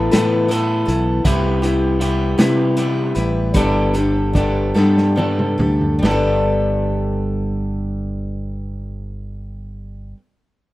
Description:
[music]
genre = folk rock and heartland rock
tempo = 46-53 BPM (dotted quarters)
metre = 6/8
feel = straight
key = G major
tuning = A4 = 444 Hz
[part]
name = picked steel-string acoustic guitar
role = accompaniment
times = 0.0-10.2 s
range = A2 to B4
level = -20 LUFS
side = left 3 dB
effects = plate reverb
[part]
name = electric guitar through a small old amp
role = riff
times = 0.0-10.2 s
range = A2 to A4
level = -22 LUFS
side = right 2 dB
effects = none
[part]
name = fingered electric bass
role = bass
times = 0.0-10.1 s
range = G1 to C3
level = -21 LUFS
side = equal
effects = none
[part]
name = vintage drum kit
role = drums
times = 0.1-6.2 s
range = hi-hat, kick drum, snare drum, toms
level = -20 LUFS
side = equal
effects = none
[sound]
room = light reverb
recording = rough home demo mix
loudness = -15 LUFS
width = side -17 dB against mid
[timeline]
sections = 0.0-6.0 A section; 6.0-8.7 B section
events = slowing down 1.2-6.0; drum fill 4.8-6.0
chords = 0.0 Asus2; 1.2 Cmaj7; 3.5 Gadd9

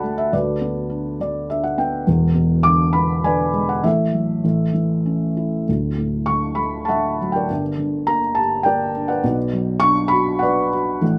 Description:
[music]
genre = classical, lyrical solo piano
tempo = 101 BPM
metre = 3/4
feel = uneven beats, rubato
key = D major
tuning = A4 = 441 Hz
[part]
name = felt-muted upright piano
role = solo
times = 0.0-11.2 s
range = D1 to D6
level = -20 LUFS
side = equal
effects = none
[sound]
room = light reverb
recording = none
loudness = -20 LUFS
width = mono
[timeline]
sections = 0.0-11.2 A section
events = felt piano fill 0.9-2.1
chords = 0.3 D69; 2.1 E7; 3.8 F#m7/A; 4.4 A; 5.7 Dadd9; 7.5 Gm; 9.2 Bm

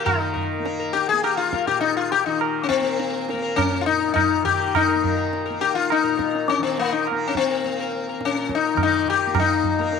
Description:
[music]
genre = indian classical, Hindustani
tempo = 103 BPM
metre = 4/4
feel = straight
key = Bb raga bageshri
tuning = A4 = 438 Hz
[part]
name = sitar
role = melody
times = 0.0-10.0 s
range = Bb3 to Bb4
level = -20 LUFS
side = left 8 dB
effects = none
[part]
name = tanpura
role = drone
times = 0.0-10.0 s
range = Bb2 to Bb3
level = -30 LUFS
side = right 4 dB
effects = none
[part]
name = tabla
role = percussion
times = 0.1-10.0 s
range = none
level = -26 LUFS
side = right 7 dB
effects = none
[sound]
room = moderate echo chamber reverb, RT60 2.2 s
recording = 1960s-style stereo with parts hard left and right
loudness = -19 LUFS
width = side -6 dB against mid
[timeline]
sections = 0.1-10.0 A section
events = none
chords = none

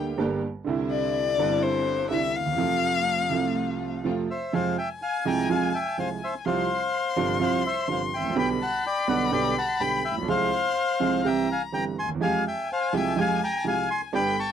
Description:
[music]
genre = tango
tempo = 125 BPM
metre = 4/4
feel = rubato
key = F major, F harmonic minor from 4.5 s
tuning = A4 = 445 Hz
[part]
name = rich violin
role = second line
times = 0.0-14.5 s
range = C5 to C6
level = -29 LUFS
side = left 7 dB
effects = none
[part]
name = warm grand piano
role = accompaniment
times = 0.0-14.3 s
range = G1 to Ab4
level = -27 LUFS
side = right 6 dB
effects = none
[part]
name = dark studio string section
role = stabs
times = 0.0-4.2, 12.2-14.3 s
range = Ab3 to G4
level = -32 LUFS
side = left 1 dB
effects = none
[part]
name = bandoneon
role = melody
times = 4.3-14.5 s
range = C5 to Db6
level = -26 LUFS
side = left 3 dB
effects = none
[sound]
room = little or no reverb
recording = dry, close 1970s-style studio recording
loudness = -23 LUFS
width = side -8 dB against mid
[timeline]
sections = 0.0-4.5 A section; 4.5-14.5 B section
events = violin solo 0.0-4.5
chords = 0.0 Gm; 0.7 Cadd9; 2.6 F; 4.5 Fm; 6.5 Csus4; 8.4 G/B; 10.3 Fm/C; 11.2 C; 12.2 Fmadd9

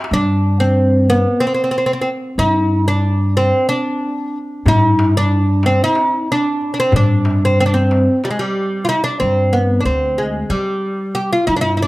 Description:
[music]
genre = Turkish makam ensemble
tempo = 185 BPM (eighths)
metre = 7/8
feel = straight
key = G makam hicaz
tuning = A4 = 438 Hz
[part]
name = darbuka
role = percussion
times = 0.0-0.1, 4.7-9.0 s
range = none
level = -19 LUFS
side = left 2 dB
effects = none
[part]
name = oud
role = melody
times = 0.1-11.9 s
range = G3 to G4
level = -16 LUFS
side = equal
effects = none
[part]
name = upright bass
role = bass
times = 0.1-11.9 s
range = D2 to G3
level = -17 LUFS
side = equal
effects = none
[sound]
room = moderate recital hall reverb, RT60 1.4 s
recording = dark, warm production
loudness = -14 LUFS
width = side -19 dB against mid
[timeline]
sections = 0.1-9.2 A section; 9.2-11.9 B section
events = none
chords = none

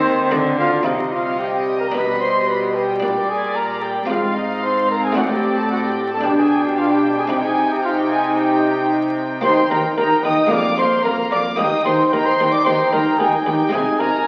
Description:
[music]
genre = classical, baroque-style concerto movement with solo episodes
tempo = 112 BPM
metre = 4/4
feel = straight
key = C minor, Eb major from 9.4 s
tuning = A4 = 440 Hz
[part]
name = dark trumpet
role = melody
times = 0.0-14.3 s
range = C4 to Eb5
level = -23 LUFS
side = equal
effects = none
[part]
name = warm chamber violin section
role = melody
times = 0.0-14.3 s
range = C5 to Ab5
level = -29 LUFS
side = equal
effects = none
[part]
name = dark studio violin section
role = second line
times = 0.0-14.3 s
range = C4 to Eb6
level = -26 LUFS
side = equal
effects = none
[part]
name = buff-stop harpsichord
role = accompaniment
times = 0.0-14.3 s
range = Eb2 to G4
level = -28 LUFS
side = equal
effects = none
[part]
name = dark chamber viola section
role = accompaniment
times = 0.0-14.3 s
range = G3 to Eb4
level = -25 LUFS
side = equal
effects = none
[part]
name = rich chamber double bass section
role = bass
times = 0.0-0.9 s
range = D2 to Eb2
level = -32 LUFS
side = equal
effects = none
[part]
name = rich studio cello section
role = bass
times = 0.0-14.1 s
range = Eb2 to Eb3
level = -28 LUFS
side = equal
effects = none
[sound]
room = wet recital hall reverb, RT60 1.6 s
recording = very old 78 rpm record, vinyl crackle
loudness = -18 LUFS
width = mono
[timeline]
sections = 0.9-14.3 A section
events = none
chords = 0.0 Cm; 1.9 G/B; 3.0 Gm/Bb; 4.1 Fm/Ab; 5.2 D5/A; 6.2 G/B; 7.3 Cm; 9.4 Eb; 10.5 Bb5/F; 11.6 Eb; 13.7 Ab/C

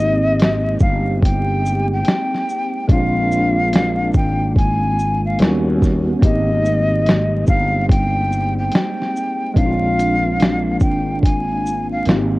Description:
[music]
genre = lo-fi hip hop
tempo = 72 BPM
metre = 4/4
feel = swing 64% on 16ths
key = unclear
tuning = A4 = 442 Hz
[part]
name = breathy jazz flute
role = melody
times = 0.0-12.1 s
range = Eb5 to Ab5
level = -21 LUFS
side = left 1 dB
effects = low-pass filter
[part]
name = tine electric piano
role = accompaniment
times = 0.0-12.4 s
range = G3 to G4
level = -22 LUFS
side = equal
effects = medium stereo tremolo, low-pass filter
[part]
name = warbly tape-like pad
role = sustained chords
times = 0.4-12.4 s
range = G3 to G4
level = -27 LUFS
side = equal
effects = chorus, built-in reverb, low-pass filter
[part]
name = sustaining fretless electric bass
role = bass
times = 0.0-12.4 s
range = G1 to Eb2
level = -20 LUFS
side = equal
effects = tube saturation
[part]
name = lo-fi sampler-style drum kit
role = drums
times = 0.4-12.3 s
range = hi-hat, kick drum, shaker, snare drum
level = -16 LUFS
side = equal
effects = none
[sound]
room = light reverb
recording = worn, warbling old tape, cassette tape, vinyl crackle, warbly pitch drift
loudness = -15 LUFS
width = side -20 dB against mid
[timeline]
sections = 0.0-12.4 A section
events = none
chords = 0.0 Abmaj7; 2.9 Bb9; 5.4 Eb7alt; 6.2 Abmaj7; 9.6 Bb9

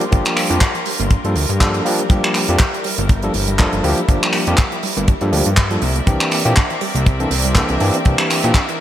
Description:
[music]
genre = nu-disco, nu disco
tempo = 121 BPM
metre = 4/4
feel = swing 55% on 16ths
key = G dorian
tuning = A4 = 439 Hz
[part]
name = overdriven tine electric piano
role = accompaniment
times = 0.0-8.5 s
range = E3 to A4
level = -21 LUFS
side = equal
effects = digital delay
[part]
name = clear studio string section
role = sustained chords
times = 0.0-8.8 s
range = G3 to E5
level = -26 LUFS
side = left 2 dB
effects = sidechain pumping
[part]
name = wide unison pluck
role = arpeggios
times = 0.0-8.8 s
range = E3 to F4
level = -29 LUFS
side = right 4 dB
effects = none
[part]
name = damped 70s drum kit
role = drums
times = 0.0-8.8 s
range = finger snaps, handclaps, hi-hat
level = -20 LUFS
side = right 1 dB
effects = gated reverb
[part]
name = fat analog bass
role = bass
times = 0.1-8.5 s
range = G1 to Bb2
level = -19 LUFS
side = equal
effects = sidechain pumping
[part]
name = kick drum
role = drums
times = 0.1-8.7 s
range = none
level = -14 LUFS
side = equal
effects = none
[sound]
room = light reverb, studio reverb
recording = bright 1980s-style digital production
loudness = -14 LUFS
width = side -12 dB against mid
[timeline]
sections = 0.0-8.8 A section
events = none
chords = 0.0 Gm7; 5.8 C9

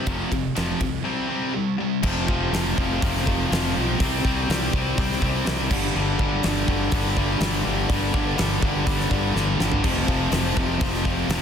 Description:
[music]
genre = hard rock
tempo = 123 BPM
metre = 4/4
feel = straight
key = unclear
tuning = A4 = 440 Hz
[part]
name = scooped high-gain guitar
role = riff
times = 0.0-11.4 s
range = F2 to C4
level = -27 LUFS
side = right 12 dB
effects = distortion
[part]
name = tight distorted guitar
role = riff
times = 0.0-11.4 s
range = F2 to C4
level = -26 LUFS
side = left 11 dB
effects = distortion
[part]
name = fuzz fingered electric bass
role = bass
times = 0.1-11.4 s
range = F1 to C2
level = -27 LUFS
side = equal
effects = overdrive
[part]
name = huge arena drum kit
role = drums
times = 0.1-11.4 s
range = crash cymbal, hi-hat, kick drum, ride cymbal, snare drum, toms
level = -26 LUFS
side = equal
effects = none
[part]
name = overdriven tonewheel organ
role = sustained chords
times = 2.0-11.4 s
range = F3 to G5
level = -35 LUFS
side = equal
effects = none
[sound]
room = light reverb, studio ambience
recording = dense, heavily limited modern master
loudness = -20 LUFS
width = side -8 dB against mid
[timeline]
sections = 0.0-2.0 A section; 2.0-11.4 B section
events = drum fill 9.4-9.8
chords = 0.1 F5; 1.1 C5; 2.0 F5; 4.0 C5; 5.7 G; 9.8 F5

